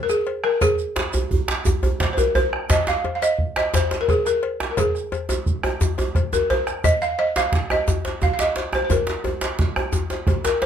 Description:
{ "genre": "west african traditional, West African drum ensemble", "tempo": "116 BPM (dotted quarters)", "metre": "12/8", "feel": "straight", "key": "Ab major pentatonic", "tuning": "A4 = 441 Hz", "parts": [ { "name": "balafon", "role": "melody", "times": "0.0-10.7 s", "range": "Ab4 to F5", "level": "-21 LUFS", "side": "equal", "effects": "none" }, { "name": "bombo", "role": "percussion", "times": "0.1-10.5 s", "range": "none", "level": "-24 LUFS", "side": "right 1 dB", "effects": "none" }, { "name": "djembe", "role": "percussion", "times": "0.1-10.7 s", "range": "none", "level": "-27 LUFS", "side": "left 4 dB", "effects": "none" }, { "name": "shekere", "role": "percussion", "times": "0.1-10.6 s", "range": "none", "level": "-30 LUFS", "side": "right 4 dB", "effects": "none" }, { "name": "cowbell", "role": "percussion", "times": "0.3-10.7 s", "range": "none", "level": "-31 LUFS", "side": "left 7 dB", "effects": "none" }, { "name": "djembe", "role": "percussion", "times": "1.0-10.7 s", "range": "none", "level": "-24 LUFS", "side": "right 3 dB", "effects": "none" } ], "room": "light reverb", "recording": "close, detailed microphones", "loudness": "-19 LUFS", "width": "side -8 dB against mid", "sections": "0.0-10.7 A section", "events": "drum fill 6.3-6.8", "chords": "none" }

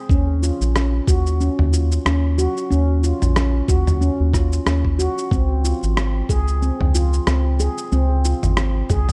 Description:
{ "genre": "organic downtempo", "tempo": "92 BPM", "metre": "4/4", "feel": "swing 57% on 16ths", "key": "Eb dorian", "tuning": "A4 = 441 Hz", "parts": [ { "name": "handpan", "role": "arpeggios", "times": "0.1-9.1 s", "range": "C4 to Ab4", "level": "-26 LUFS", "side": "equal", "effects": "delay" }, { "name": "round analog bass", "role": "bass", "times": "0.1-9.1 s", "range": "Ab1 to Eb2", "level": "-21 LUFS", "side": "equal", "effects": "none" }, { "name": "dusty soul sampler-style drum kit", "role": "drums", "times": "0.1-9.1 s", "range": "rim click, shaker, toms", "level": "-27 LUFS", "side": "equal", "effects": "studio reverb" }, { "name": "electronic kick drum", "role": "drums", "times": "0.1-9.1 s", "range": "none", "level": "-22 LUFS", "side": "equal", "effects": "studio reverb" } ], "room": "light reverb", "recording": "dark, warm production", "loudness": "-19 LUFS", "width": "mono", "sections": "0.0-9.1 A section", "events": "none", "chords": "0.1 Ebm9; 5.3 Bbm9 (rootless)" }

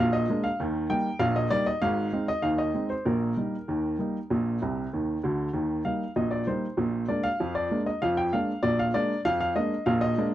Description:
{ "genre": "ragtime piano", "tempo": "97 BPM", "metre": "2/4", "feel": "straight", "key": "Eb major", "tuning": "A4 = 440 Hz", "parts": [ { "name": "warm upright piano", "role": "solo", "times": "0.0-10.3 s", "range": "Ab1 to G5", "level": "-24 LUFS", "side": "equal", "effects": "none" } ], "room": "light reverb", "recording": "dry, close 1970s-style studio recording", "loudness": "-25 LUFS", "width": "side -13 dB against mid", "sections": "0.0-10.3 A section", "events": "upright piano fill 4.6-5.6", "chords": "0.0 Bb7; 0.6 Eb; 1.8 Ab; 3.1 Eb/Bb; 4.3 Bb; 5.6 Eb; 6.8 Bb7" }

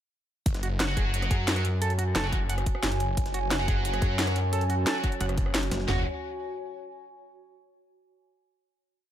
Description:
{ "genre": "dark technical drum and bass", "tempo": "177 BPM", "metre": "4/4", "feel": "straight", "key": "unclear", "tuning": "A4 = 440 Hz", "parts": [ { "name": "snarling distorted saw bass", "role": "bass", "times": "0.5-6.0 s", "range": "F#1", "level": "-30 LUFS", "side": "equal", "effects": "distortion" }, { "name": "drum and bass drum kit", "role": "drums", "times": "0.5-6.0 s", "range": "kick drum, snare drum, toms", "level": "-28 LUFS", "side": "equal", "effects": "none" }, { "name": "drum and bass drum kit", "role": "drums", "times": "0.5-5.8 s", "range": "hi-hat, rim click, snare drum", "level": "-30 LUFS", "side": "equal", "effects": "overdrive" }, { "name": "jungle sampler-style drum kit", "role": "drums", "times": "0.5-5.9 s", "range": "hi-hat, snare drum", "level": "-41 LUFS", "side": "equal", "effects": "none" }, { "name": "warbly tape-like pad", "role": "texture", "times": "0.5-7.2 s", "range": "F#4 to G#5", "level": "-35 LUFS", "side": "right 2 dB", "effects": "chorus, built-in reverb, sidechain pumping" }, { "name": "semi-hollow electric guitar", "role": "arpeggios", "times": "0.6-6.0 s", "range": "F#4 to F#5", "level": "-36 LUFS", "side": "right 4 dB", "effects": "sidechain pumping, ping-pong delay" }, { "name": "heavy high-gain guitar", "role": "stabs", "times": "0.9-6.0 s", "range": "F#4 to F#5", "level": "-35 LUFS", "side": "equal", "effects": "distortion, ping-pong delay" }, { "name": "metallic wobble bass", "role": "bass", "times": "1.3-5.9 s", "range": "F#1 to F#2", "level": "-27 LUFS", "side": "equal", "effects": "chorus" }, { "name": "dark analog pad", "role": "sustained chords", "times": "3.2-6.0 s", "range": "F#3 to C#5", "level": "-38 LUFS", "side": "left 1 dB", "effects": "chorus, sidechain pumping" } ], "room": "little or no reverb", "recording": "none", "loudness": "-25 LUFS", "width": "side -11 dB against mid", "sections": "0.5-5.9 drop; 5.9-7.2 final chord", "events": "drop 0.5-5.9", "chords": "0.5 F#5" }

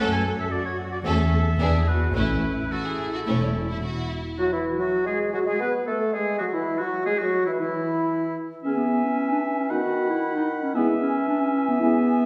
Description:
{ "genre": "quick classical-period movement for symphony orchestra", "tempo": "113 BPM", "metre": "4/4", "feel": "rubato", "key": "A major", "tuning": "A4 = 437 Hz", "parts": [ { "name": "rich studio violin section", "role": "melody", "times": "0.0-4.4 s", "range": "D4 to A4", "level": "-36 LUFS", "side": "equal", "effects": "none" }, { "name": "clear oboe", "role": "second line", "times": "0.0-12.3 s", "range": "E4 to G#5", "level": "-33 LUFS", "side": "equal", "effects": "none" }, { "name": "clear studio violin section", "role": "second line", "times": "0.0-3.5 s", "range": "C#4 to D4", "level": "-36 LUFS", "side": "equal", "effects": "none" }, { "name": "warm studio viola section", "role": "accompaniment", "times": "0.0-3.5 s", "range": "A3 to B3", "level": "-33 LUFS", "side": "equal", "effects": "none" }, { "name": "warm studio cello section", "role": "bass", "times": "0.0-4.1 s", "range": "E4 to A4", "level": "-36 LUFS", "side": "equal", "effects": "none" }, { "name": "warm studio double bass section", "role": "bass", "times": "0.0-3.7 s", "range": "E1 to F#2", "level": "-28 LUFS", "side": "equal", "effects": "none" }, { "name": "mellow clarinet", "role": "second line", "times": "4.4-12.3 s", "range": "B3 to B4", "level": "-28 LUFS", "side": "equal", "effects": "none" }, { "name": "mellow hollow silver concert flute", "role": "second line", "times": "4.4-12.3 s", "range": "E4 to B5", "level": "-32 LUFS", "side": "equal", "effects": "none" }, { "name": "warm bassoon", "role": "accompaniment", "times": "4.4-12.3 s", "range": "D#3 to B3", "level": "-32 LUFS", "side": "equal", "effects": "none" }, { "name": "mellow French horn section", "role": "sustained chords", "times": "4.4-12.0 s", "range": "E3 to G#4", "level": "-32 LUFS", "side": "equal", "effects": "none" } ], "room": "wet scoring stage reverb, RT60 1.7 s", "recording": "heard from further back in the room", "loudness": "-24 LUFS", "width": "mono", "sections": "0.0-4.4 A section; 4.4-12.3 B section", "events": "none", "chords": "0.0 F#m; 1.1 A/E; 1.6 E7; 2.2 A; 4.4 N.C.; 8.6 E; 9.7 B/D#; 10.8 E" }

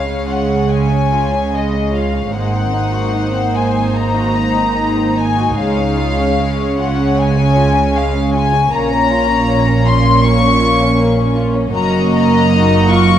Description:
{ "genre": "classical, slow romantic movement for string orchestra", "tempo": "71-80 BPM", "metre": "4/4", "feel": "rubato", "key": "Db major", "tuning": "A4 = 440 Hz", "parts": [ { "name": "warm symphonic violin section", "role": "melody", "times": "0.0-13.2 s", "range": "Eb5 to Db6", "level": "-18 LUFS", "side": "left 4 dB", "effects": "none" }, { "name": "warm symphonic violin section", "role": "second line", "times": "0.0-13.2 s", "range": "Ab3 to D#5", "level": "-21 LUFS", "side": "left 3 dB", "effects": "none" }, { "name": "dark studio viola section", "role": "accompaniment", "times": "0.0-13.2 s", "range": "Ab3 to E#4", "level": "-18 LUFS", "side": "right 2 dB", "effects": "none" }, { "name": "dark symphonic double bass section", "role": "bass", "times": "0.0-13.2 s", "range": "F#1 to Db2", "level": "-18 LUFS", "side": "right 2 dB", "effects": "none" }, { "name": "rich symphonic cello section", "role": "bass", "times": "0.0-13.2 s", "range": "F#2 to Db3", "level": "-20 LUFS", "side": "right 3 dB", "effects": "none" } ], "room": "wet scoring stage reverb, RT60 1.8 s", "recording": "dark, warm production", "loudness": "-12 LUFS", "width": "side -10 dB against mid", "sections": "0.0-13.2 A section", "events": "none", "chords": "0.0 Db; 2.4 Ab9; 5.6 Db; 8.7 Bbm; 11.8 F#" }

